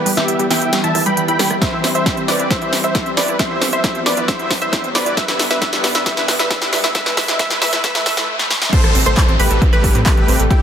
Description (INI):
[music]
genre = uplifting trance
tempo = 135 BPM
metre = 4/4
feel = straight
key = A minor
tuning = A4 = 439 Hz
[part]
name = dense compressed supersaw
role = melody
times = 0.0-10.6 s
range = E4 to B5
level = -20 LUFS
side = right 1 dB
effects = sidechain pumping, low-pass filter, dub echo
[part]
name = analog pluck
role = second line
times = 0.0-10.6 s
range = G4 to B5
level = -25 LUFS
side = right 1 dB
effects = none
[part]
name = lush unison pad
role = sustained chords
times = 0.0-10.6 s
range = C3 to C4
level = -25 LUFS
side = left 1 dB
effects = chorus, sidechain pumping
[part]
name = analog pluck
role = arpeggios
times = 0.0-10.6 s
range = E3 to C5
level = -26 LUFS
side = right 3 dB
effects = chorus, sidechain pumping, dub echo
[part]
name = tight sequencer bass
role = bass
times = 0.0-10.5 s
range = E1 to A2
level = -24 LUFS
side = equal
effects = none
[part]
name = riser, swell and downlifter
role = sound effects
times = 1.5-10.6 s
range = none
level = -29 LUFS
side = equal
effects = none
[part]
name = big-room dance drum kit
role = drums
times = 0.1-10.6 s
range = crash cymbal, handclaps, hi-hat, rim click, snare drum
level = -18 LUFS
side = equal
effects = sidechain pumping on hats, sidechain pumping on cymbals
[part]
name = electronic kick drum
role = drums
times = 1.6-10.6 s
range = none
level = -17 LUFS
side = equal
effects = none
[sound]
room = light reverb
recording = dense, heavily limited modern master, high-pass filter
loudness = -14 LUFS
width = side -8 dB against mid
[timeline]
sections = 0.0-8.7 A section; 8.7-10.6 B section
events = build-up 0.0-8.7; drum fill 0.0-8.3, 8.4-8.7; filter sweep 0.0-8.7; riser 1.5-8.3; swell 7.8-8.7; drop 8.7-10.6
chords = 0.0 Em; 1.6 C; 5.2 G; 8.7 Am7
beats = 0.28 0.73 1.17 | 1.62 2.06 2.51 2.95 | 3.39 3.84 4.28 4.73 | 5.17 5.62 6.06 6.51 | 6.95 7.39 7.84 8.28 | 8.73 9.17 9.62 10.06 | 10.51